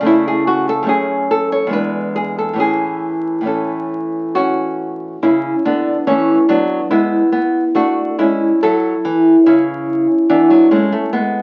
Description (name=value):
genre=classical, baroque-style dance for nylon-string guitar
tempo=71 BPM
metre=3/4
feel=rubato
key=A major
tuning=A4 = 439 Hz
part: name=nylon-string guitar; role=solo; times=0.0-11.4 s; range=E2 to C#5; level=-15 LUFS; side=equal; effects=none
room=moderate large studio reverb, RT60 1.1 s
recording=very old 78 rpm record, vinyl crackle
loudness=-15 LUFS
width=mono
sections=0.0-5.2 A section; 5.2-11.4 B section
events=none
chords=0.1 A/C#; 0.9 F#m; 1.7 E7; 2.6 A; 5.2 A/C#; 6.9 E/G#; 7.8 A; 10.3 E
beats=| 0.07 0.89 1.74 | 2.60 3.48 4.35 | 5.22 6.07 6.92 | 7.76 8.63 9.47 | 10.30 11.13